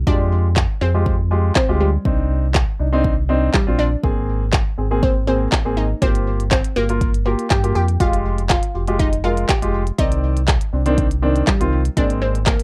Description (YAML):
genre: dance-pop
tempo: 121 BPM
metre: 4/4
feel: straight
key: C minor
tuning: A4 = 440 Hz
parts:
  - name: analog pluck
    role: melody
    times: 0.0-12.6 s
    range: G3 to G4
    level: -26 LUFS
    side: equal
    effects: chorus
  - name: sub bass with octave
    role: bass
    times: 0.0-12.6 s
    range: F1 to G2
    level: -22 LUFS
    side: equal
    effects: sidechain pumping
  - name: warm grand piano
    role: accompaniment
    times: 0.1-12.4 s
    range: Eb3 to D5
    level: -25 LUFS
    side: equal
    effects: none
  - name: glitchy drum kit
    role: drums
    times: 0.1-12.6 s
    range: handclaps, hi-hat, kick drum, snare drum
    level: -21 LUFS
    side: equal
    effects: none
room: light reverb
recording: rough home demo mix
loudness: -18 LUFS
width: mono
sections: 0.1-12.6 A section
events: none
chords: 0.1 Fmadd9; 2.1 Cmadd9; 4.0 Abadd9; 6.0 Gm7; 8.0 Fmadd9; 10.0 Cmadd9; 12.0 Abadd9